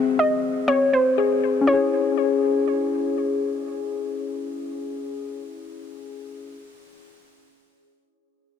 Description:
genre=hip hop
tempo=121 BPM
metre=4/4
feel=half-time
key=C# minor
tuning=A4 = 439 Hz
part: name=muted felt-like synth keys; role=arpeggios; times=0.0-6.7 s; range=B#3 to G#4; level=-23 LUFS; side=left 5 dB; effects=chorus, ping-pong delay
part: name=warbly dusty pluck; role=melody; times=0.2-3.1 s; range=B#4 to D#5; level=-23 LUFS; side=equal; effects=chorus, ping-pong delay
room=light reverb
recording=dense, heavily limited modern master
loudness=-20 LUFS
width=side -8 dB against mid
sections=0.0-1.7 A section; 1.7-5.6 B section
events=none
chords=0.0 G#; 1.7 C#m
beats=0.18 0.68 1.18 | 1.67 2.17 2.66 3.16 | 3.65 4.15 4.65 5.14

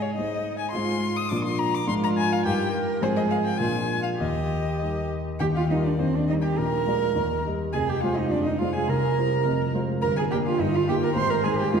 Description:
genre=quick classical-period movement for piano trio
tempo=104 BPM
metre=2/4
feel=rubato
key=Eb major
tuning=A4 = 445 Hz
part: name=warm violin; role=melody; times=0.0-11.8 s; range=C5 to Eb6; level=-30 LUFS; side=left 6 dB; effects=none
part: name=warm cello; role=second line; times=0.0-11.8 s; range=C4 to C5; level=-26 LUFS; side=right 5 dB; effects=none
part: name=dark concert grand piano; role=accompaniment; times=0.0-11.8 s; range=F1 to Eb5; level=-25 LUFS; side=left 1 dB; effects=none
room=wet concert hall reverb, RT60 1.9 s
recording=none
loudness=-22 LUFS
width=side -6 dB against mid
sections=0.0-5.4 A section; 5.4-11.8 B section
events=none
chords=0.0 Ab; 0.7 Fm/Ab; 1.3 Bb; 1.9 Bb7/Ab; 2.4 Eb/G; 3.0 Fm/Ab; 3.6 Bb7; 4.2 Eb; 6.6 Bb7; 7.1 Eb; 7.7 Fm; 8.9 C7; 9.4 Fm; 10.0 Gm; 10.6 Eb/G; 11.2 Ab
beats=0.17 | 0.73 1.30 | 1.87 2.44 | 3.02 3.60 | 4.20 4.80 | 5.40 5.99 | 6.57 7.15 | 7.73 8.30 | 8.88 9.45 | 10.02 10.59 | 11.16 11.73

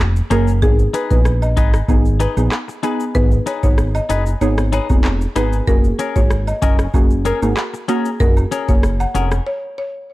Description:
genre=dancehall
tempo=95 BPM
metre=4/4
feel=straight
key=G# dorian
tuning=A4 = 440 Hz
part: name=fat analog bass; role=bass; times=0.0-9.4 s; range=E#1 to A#1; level=-18 LUFS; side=equal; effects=none
part: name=booming analog drum machine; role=drums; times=0.2-9.5 s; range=handclaps, hi-hat, kick drum, rim click, shaker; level=-16 LUFS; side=equal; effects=overdrive
part: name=buzzing marimba with medium mallets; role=melody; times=0.3-9.9 s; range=G#4 to F#5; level=-24 LUFS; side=left 1 dB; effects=none
part: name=deep mellow chord stab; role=accompaniment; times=0.3-8.8 s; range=A#3 to G#4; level=-22 LUFS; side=right 2 dB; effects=chorus
part: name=twangy electric guitar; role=arpeggios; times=0.3-9.4 s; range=C#4 to B4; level=-25 LUFS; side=left 7 dB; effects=spring reverb
part: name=cabasa and woodblock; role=percussion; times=0.3-9.3 s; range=none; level=-34 LUFS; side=right 5 dB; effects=none
room=little or no reverb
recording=dark, warm production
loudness=-14 LUFS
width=side -17 dB against mid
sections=0.0-10.1 A section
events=break 9.5-10.1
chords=0.0 F#add9; 0.6 G#m; 5.7 F#add9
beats=| 0.62 1.25 1.89 2.52 | 3.15 3.78 4.41 5.04 | 5.68 6.31 6.94 7.57 | 8.20 8.83 9.47

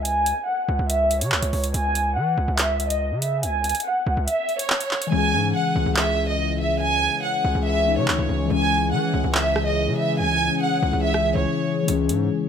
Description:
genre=hip hop, drill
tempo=142 BPM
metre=4/4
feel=half-time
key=C# minor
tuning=A4 = 440 Hz
part: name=warm chamber violin section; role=melody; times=0.0-11.8 s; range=C#5 to G#5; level=-23 LUFS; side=right 1 dB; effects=low-pass filter, ping-pong delay
part: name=distorted 808-style bass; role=bass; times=0.0-12.3 s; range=C#2 to E3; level=-25 LUFS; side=equal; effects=distortion
part: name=drill drum kit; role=drums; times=0.1-12.2 s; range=handclaps, hi-hat, rim click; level=-24 LUFS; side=right 1 dB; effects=none
part: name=mellow tine electric piano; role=accompaniment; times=5.1-12.5 s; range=E3 to G#4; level=-26 LUFS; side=left 8 dB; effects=lush chorus, low-pass filter
part: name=sweeping resonant pad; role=sustained chords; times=5.4-12.5 s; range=C#3 to G#4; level=-27 LUFS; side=left 2 dB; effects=chorus, phaser
room=light reverb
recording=none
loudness=-19 LUFS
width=side -7 dB against mid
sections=0.0-12.5 A section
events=filter sweep 0.0-5.1; kick muted 4.3-5.1; hi-hats muted 5.1-11.9; break 11.5-11.9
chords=0.0 C#5; 1.7 C#m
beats=| 0.05 0.47 0.90 1.32 | 1.74 2.16 2.59 3.01 | 3.43 3.85 4.28 4.70 | 5.12 5.54 5.97 6.39 | 6.81 7.23 7.66 8.08 | 8.50 8.92 9.35 9.77 | 10.19 10.61 11.04 11.46 | 11.88 12.30

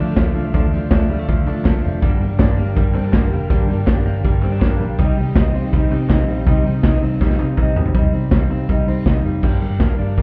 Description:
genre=jangly indie pop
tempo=162 BPM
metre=4/4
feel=straight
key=G minor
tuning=A4 = 439 Hz
part: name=fingerpicked steel-string acoustic guitar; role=accompaniment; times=0.0-10.2 s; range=G2 to Eb4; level=-26 LUFS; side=equal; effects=none
part: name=string machine, cellos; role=sustained chords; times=0.0-7.9 s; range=D4 to G5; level=-33 LUFS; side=equal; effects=ensemble chorus
part: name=direct-recorded clean electric guitar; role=arpeggios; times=0.0-10.2 s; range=F3 to Eb4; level=-28 LUFS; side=equal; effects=digital delay
part: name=vintage muted picked electric bass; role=bass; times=0.0-10.2 s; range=F1 to D3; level=-22 LUFS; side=equal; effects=none
part: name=raw garage drum kit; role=drums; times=0.2-10.2 s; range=crash cymbal, hi-hat, kick drum, ride cymbal, snare drum, toms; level=-20 LUFS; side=equal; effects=none
part: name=group handclap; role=percussion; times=0.2-7.7 s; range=none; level=-42 LUFS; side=equal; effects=none
room=light reverb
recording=heard muffled through a wall, club reverb, EQ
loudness=-17 LUFS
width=mono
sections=0.0-7.9 A section; 7.9-9.4 B section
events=drum fill 7.2-7.9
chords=0.0 Dm; 2.0 Gm; 5.0 Cm; 9.4 Gm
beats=0.17 | 0.54 0.91 1.28 1.65 | 2.02 2.39 2.76 3.13 | 3.50 3.87 4.24 4.61 | 4.98 5.36 5.72 6.09 | 6.46 6.83 7.21 7.58 | 7.95 8.32 8.69 9.06 | 9.43 9.80 10.17

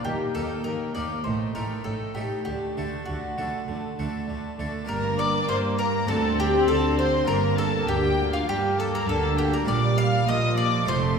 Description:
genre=classical, baroque-style concerto movement with solo episodes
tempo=100 BPM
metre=4/4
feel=straight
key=G minor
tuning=A4 = 441 Hz
part: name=clear chamber violin section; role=melody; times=0.0-11.2 s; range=F5 to F6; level=-34 LUFS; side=left 3 dB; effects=none
part: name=mandolin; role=melody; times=0.0-11.2 s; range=F4 to F5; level=-28 LUFS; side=left 2 dB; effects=none
part: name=warm studio violin section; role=second line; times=0.0-11.2 s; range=D4 to F5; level=-30 LUFS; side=left 2 dB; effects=none
part: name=clear studio viola section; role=accompaniment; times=0.0-11.2 s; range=F3 to C4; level=-31 LUFS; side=equal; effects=none
part: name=harpsichord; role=accompaniment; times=0.0-11.2 s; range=D2 to A4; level=-36 LUFS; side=equal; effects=none
part: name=rich chamber double bass section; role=bass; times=0.1-11.2 s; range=F1 to Bb2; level=-29 LUFS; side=right 4 dB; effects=none
part: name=warm chamber cello section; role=bass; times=0.1-11.2 s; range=D2 to Bb3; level=-30 LUFS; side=right 2 dB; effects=none
room=wet concert hall reverb, RT60 1.9 s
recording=heard from further back in the room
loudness=-22 LUFS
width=side -6 dB against mid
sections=0.0-4.9 A section; 4.9-11.2 B section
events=none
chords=0.1 Eb; 1.2 Am7b5; 2.5 D; 4.9 Gm; 6.1 D7; 7.3 Gm; 9.7 Bb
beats=| 0.06 0.65 1.25 1.85 | 2.46 3.07 3.68 4.28 | 4.88 5.49 6.09 6.69 | 7.29 7.89 8.48 9.08 | 9.68 10.28 10.88

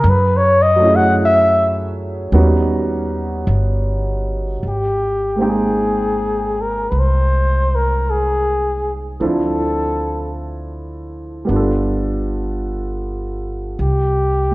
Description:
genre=jazz ballad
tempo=52 BPM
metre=4/4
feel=swing 68% on 8ths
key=unclear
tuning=A4 = 442 Hz
part: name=warm flugelhorn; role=melody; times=0.0-14.5 s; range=G4 to F#5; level=-17 LUFS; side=left 1 dB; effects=none
part: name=warm grand piano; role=accompaniment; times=0.0-14.5 s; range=F3 to G5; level=-21 LUFS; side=right 2 dB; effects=none
part: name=upright bass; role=bass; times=0.0-14.5 s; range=G1 to F#2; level=-19 LUFS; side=equal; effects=none
room=moderate recital hall reverb, RT60 1.6 s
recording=worn, warbling old tape, cassette tape, warbly pitch drift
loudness=-15 LUFS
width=side -20 dB against mid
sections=0.0-4.6 A section; 4.6-14.5 B section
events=flugelhorn solo 0.0-4.6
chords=0.0 F#m9; 2.3 D#7alt; 4.6 Abmaj9; 9.2 Dm7; 11.5 G7; 13.8 C5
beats=| 0.03 1.17 2.31 3.47 | 4.62 5.76 6.91 8.06 | 9.21 10.35 11.49 12.64 | 13.78

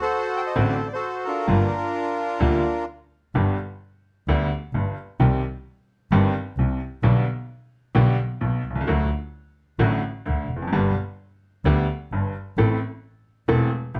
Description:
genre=tango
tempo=130 BPM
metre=4/4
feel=rubato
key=G minor, G major from 3.4 s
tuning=A4 = 436 Hz
part: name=bandoneon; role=melody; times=0.0-2.9 s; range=D4 to G5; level=-27 LUFS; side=equal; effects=none
part: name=bright upright piano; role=accompaniment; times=0.6-14.0 s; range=E1 to A4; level=-26 LUFS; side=equal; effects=none
part: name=dark double bass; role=bass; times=0.6-14.0 s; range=E1 to D2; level=-25 LUFS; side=equal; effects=none
room=moderate studio reverb, RT60 0.6 s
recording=dark, warm production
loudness=-23 LUFS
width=mono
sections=0.0-3.4 A section; 3.4-14.0 B section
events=none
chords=0.0 D7; 1.5 Gm7; 3.4 G; 5.2 Cm; 7.0 G/B; 8.9 D; 10.7 G; 12.6 Am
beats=0.11 0.56 1.02 | 1.48 1.95 2.41 2.88 | 3.35 3.81 4.28 4.74 | 5.20 5.67 6.12 6.58 | 7.04 7.50 7.96 8.42 | 8.87 9.33 9.79 10.26 | 10.73 11.19 11.65 12.11 | 12.57 13.03 13.49 13.95

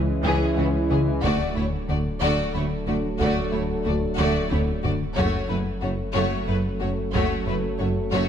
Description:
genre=cinematic, hybrid orchestral and electronic film score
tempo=61 BPM (dotted quarters)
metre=6/8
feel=straight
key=unclear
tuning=A4 = 441 Hz
part: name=clear trombone section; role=sustained chords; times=0.0-8.3 s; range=E3 to A3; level=-31 LUFS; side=right 4 dB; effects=none
part: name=dark French horn section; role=sustained chords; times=0.0-8.3 s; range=C#4 to A4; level=-31 LUFS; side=left 3 dB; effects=none
part: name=smooth synth bass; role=riff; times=0.0-8.3 s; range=C#2 to F#3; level=-29 LUFS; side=left 2 dB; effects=none
part: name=dark tuba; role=bass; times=0.0-8.3 s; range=F#1 to D2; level=-32 LUFS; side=right 3 dB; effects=none
part: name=warm sub bass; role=bass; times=0.0-8.3 s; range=D1 to C#2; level=-33 LUFS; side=equal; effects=none
part: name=rich studio violin section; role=melody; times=0.2-8.3 s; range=F#4 to D5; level=-31 LUFS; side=left 4 dB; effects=none
part: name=rich symphonic viola section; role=accompaniment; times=0.2-8.3 s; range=E3 to A3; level=-32 LUFS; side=right 3 dB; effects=none
part: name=rich symphonic cello section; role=bass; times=0.2-8.2 s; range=C#2 to F#2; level=-32 LUFS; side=right 2 dB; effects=none
part: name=rich studio violin section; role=second line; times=0.3-8.3 s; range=B3 to F#4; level=-32 LUFS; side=left 3 dB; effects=none
part: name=rich symphonic double bass section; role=bass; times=0.3-8.2 s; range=F#1 to D2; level=-33 LUFS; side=right 3 dB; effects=none
part: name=solo taiko drums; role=drums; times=0.9-7.8 s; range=none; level=-32 LUFS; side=equal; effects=none
room=moderate scoring stage reverb, RT60 2.1 s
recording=none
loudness=-21 LUFS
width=side -8 dB against mid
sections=0.0-8.3 A section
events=drum fill 4.2-5.2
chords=0.0 C#m; 1.2 D; 5.2 F#m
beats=0.26 | 1.24 2.22 | 3.21 4.19 | 5.17 6.16 | 7.14 8.12

